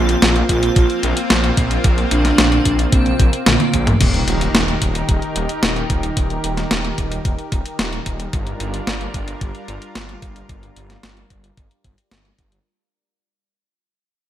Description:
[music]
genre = synthwave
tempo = 111 BPM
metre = 4/4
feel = straight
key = G minor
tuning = A4 = 441 Hz
[part]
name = soft octave-layered synth lead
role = melody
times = 0.0-3.9 s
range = Bb3 to F4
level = -22 LUFS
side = right 1 dB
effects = chorus, tremolo, digital delay
[part]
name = airy dreamy lead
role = second line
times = 0.0-3.9 s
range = Bb3 to F4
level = -25 LUFS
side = right 3 dB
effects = chorus, digital delay
[part]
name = lush unison pad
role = sustained chords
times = 0.0-12.6 s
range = Eb3 to Bb4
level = -24 LUFS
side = equal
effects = chorus
[part]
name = wide detuned saw bass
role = bass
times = 0.0-12.6 s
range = Eb1 to Bb1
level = -21 LUFS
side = equal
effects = chorus
[part]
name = clean 12-bit digital drum machine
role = drums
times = 0.1-12.6 s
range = crash cymbal, hi-hat, snare drum, toms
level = -19 LUFS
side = equal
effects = gated reverb
[part]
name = electronic kick drum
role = drums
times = 0.5-12.5 s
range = none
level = -18 LUFS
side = equal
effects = none
[part]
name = impact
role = sound effects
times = 4.0-6.2 s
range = none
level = -26 LUFS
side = equal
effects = none
[sound]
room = light reverb, digital ambience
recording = bright 1980s-style digital production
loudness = -15 LUFS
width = side -11 dB against mid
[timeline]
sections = 0.0-4.0 A section; 4.0-12.7 B section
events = drum fill 3.5-4.0; fade-out 4.0-12.7; impact 4.0-6.2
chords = 0.0 Bbsus2; 4.0 Eb; 8.3 Gm7

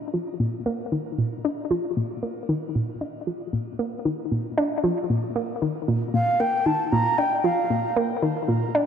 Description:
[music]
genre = ambient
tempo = 115 BPM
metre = 4/4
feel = straight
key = Bb major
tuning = A4 = 440 Hz
[part]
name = analog pluck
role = riff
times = 0.0-8.9 s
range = Bb2 to D4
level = -24 LUFS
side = equal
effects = chorus, shimmer reverb, ping-pong delay
[part]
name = breathy mellow concert flute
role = melody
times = 6.1-8.0 s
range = F5 to Bb5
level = -23 LUFS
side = right 1 dB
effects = shimmer reverb, ping-pong delay
[sound]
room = wet plate reverb, RT60 2.8 s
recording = dark, warm production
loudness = -22 LUFS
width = side -8 dB against mid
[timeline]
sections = 0.0-8.9 A section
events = filter sweep on synth arpeggio sound 0.0-8.9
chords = 0.0 Bb

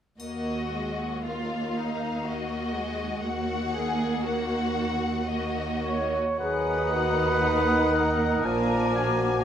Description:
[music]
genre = classical, slow romantic movement for symphony orchestra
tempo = 51-61 BPM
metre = 3/4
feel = rubato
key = Eb minor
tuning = A4 = 442 Hz
[part]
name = warm studio violin section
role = melody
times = 0.2-9.4 s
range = Eb5 to Ab5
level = -35 LUFS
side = left 4 dB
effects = none
[part]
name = rich studio violin section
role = second line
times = 0.2-9.4 s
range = D4 to Ab4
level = -33 LUFS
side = left 3 dB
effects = none
[part]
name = rich studio viola section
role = accompaniment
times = 0.2-9.4 s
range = Ab3 to Bb3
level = -32 LUFS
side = right 2 dB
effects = none
[part]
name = rich studio cello section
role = bass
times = 0.2-9.4 s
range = Eb2 to Bb2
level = -32 LUFS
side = right 1 dB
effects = none
[part]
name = triangle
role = percussion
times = 0.2-2.2 s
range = none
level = -50 LUFS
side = left 2 dB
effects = none
[part]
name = clear trumpet section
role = stabs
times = 5.8-9.4 s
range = Bb4 to Db5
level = -28 LUFS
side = right 4 dB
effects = none
[part]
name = clear oboe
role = second line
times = 6.4-9.4 s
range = Gb5 to Bb5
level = -31 LUFS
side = left 2 dB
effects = none
[part]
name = mellow hollow flute section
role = second line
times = 6.4-9.4 s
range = D6 to Eb6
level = -33 LUFS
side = left 2 dB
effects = none
[part]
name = warm bassoon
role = accompaniment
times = 6.4-9.4 s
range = Eb3 to Gb3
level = -30 LUFS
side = right 1 dB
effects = none
[part]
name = mellow French horn section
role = sustained chords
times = 6.4-9.4 s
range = Eb4 to Ab4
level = -29 LUFS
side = left 3 dB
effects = none
[part]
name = rich studio double bass section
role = bass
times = 6.4-9.4 s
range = Bb1 to Eb2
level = -33 LUFS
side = right 1 dB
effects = none
[sound]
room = moderate scoring stage reverb, RT60 1.9 s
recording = none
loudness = -24 LUFS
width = side -9 dB against mid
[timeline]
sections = 0.2-6.4 A section; 6.4-9.4 B section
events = none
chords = 0.2 Ebm; 8.4 Bb7

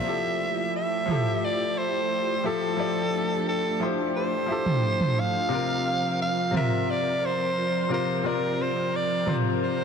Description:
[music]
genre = sunset chillout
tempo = 88 BPM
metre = 4/4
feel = straight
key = F major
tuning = A4 = 444 Hz
[part]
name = raspy soprano saxophone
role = melody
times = 0.0-9.8 s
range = A4 to F5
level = -27 LUFS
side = right 1 dB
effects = digital delay
[part]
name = bright concert grand piano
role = accompaniment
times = 0.0-9.8 s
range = C3 to D5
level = -30 LUFS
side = moving between left 6 dB and right 1 dB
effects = auto-pan, vintage 12-bit sampler grit, ping-pong delay
[part]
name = soft string machine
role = sustained chords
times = 0.0-9.8 s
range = F3 to Bb4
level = -30 LUFS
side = equal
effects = ensemble chorus
[part]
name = electronic toms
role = drums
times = 1.1-9.4 s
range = none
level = -28 LUFS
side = right 2 dB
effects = low-pass filter on hats, studio reverb, low-pass filter on perc, soft clipping on snare, low-pass filter on snare, low-pass filter on toms
[sound]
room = moderate lush hall reverb, RT60 3.0 s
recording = dense, heavily limited modern master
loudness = -23 LUFS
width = side -6 dB against mid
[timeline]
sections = 0.1-9.8 A section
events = none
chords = 0.1 Fmaj9; 5.5 C7sus4

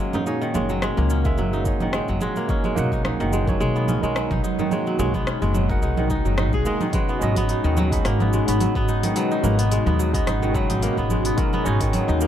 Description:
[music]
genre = organic downtempo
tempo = 108 BPM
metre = 4/4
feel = swing 54% on 16ths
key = G# minor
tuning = A4 = 441 Hz
[part]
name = barky tine electric piano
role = accompaniment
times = 0.0-12.3 s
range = D#3 to B5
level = -28 LUFS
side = right 4 dB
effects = overdrive, sidechain pumping, ping-pong delay
[part]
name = airy breathy pad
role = sustained chords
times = 0.0-12.3 s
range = A#2 to F#4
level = -28 LUFS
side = left 1 dB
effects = chorus, phaser, sidechain pumping
[part]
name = kora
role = arpeggios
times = 0.0-12.3 s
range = D#3 to G#4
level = -26 LUFS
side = equal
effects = ping-pong delay
[part]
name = organic electronic drum kit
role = drums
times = 0.1-12.3 s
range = cabasa, congas, hi-hat, rim click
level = -29 LUFS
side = right 2 dB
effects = overdrive
[part]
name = frame drum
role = percussion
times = 0.1-5.1 s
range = none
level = -31 LUFS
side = right 4 dB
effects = none
[part]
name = upright bass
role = bass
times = 0.5-12.3 s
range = F#1 to D#2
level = -23 LUFS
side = equal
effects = sidechain pumping
[part]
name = electronic kick drum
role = drums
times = 1.3-11.9 s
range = none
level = -26 LUFS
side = equal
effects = overdrive
[part]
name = swell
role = sound effects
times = 6.1-6.9 s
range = none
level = -33 LUFS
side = left 1 dB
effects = none
[sound]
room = light reverb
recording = dark, warm production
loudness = -19 LUFS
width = side -10 dB against mid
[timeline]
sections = 0.0-6.9 A section; 6.9-12.3 B section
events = swell 6.1-6.9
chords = 0.0 F#7; 2.5 B; 6.9 G#m7

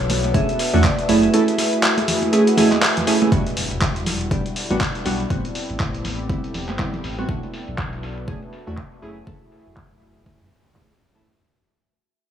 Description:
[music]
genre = deep house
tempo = 121 BPM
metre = 4/4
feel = swing 58% on 16ths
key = unclear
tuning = A4 = 440 Hz
[part]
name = vibraphone with medium hard mallets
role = melody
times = 0.0-2.8 s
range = C#5 to F#5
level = -27 LUFS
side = left 2 dB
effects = vintage 12-bit sampler grit, tape echo
[part]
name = warm analog pad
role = sustained chords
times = 0.0-11.2 s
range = G3 to A4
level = -29 LUFS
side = equal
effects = chorus, sidechain pumping
[part]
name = sub bass with octave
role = bass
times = 0.0-11.2 s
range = E1 to F#2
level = -26 LUFS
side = equal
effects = none
[part]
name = warbly tape-like pad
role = texture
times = 0.0-11.3 s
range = E4 to E5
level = -30 LUFS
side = left 1 dB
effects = chorus, built-in reverb, phaser, sidechain pumping
[part]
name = dusty soul sampler-style drum kit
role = drums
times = 0.1-11.2 s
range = handclaps, hi-hat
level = -24 LUFS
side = equal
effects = overdrive, low-pass filter on hats, low-pass filter on snare, low-pass filter on room
[part]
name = congas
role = percussion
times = 0.1-7.0 s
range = none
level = -27 LUFS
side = right 2 dB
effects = none
[part]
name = warm analog keys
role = stabs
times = 0.3-11.2 s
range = G3 to A4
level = -21 LUFS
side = right 2 dB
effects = chorus, sidechain pumping
[part]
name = electronic kick drum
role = drums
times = 0.3-10.9 s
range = none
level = -24 LUFS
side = equal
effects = overdrive
[part]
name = impact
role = sound effects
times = 3.3-5.3 s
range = none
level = -31 LUFS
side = equal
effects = none
[sound]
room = moderate lush hall reverb, RT60 2.3 s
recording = dry, gritty hardware recording, transformer saturation, small room ambience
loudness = -17 LUFS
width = side -9 dB against mid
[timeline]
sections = 0.0-3.3 A section; 3.3-11.3 B section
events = drop 0.0-3.3; fade-out 3.3-11.3; impact 3.3-5.3; filter sweep on drum 3.3-11.3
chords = 0.0 Bm9; 1.1 F#m9; 3.3 Em9; 5.3 Am9; 7.3 Bm9; 9.0 F#m9

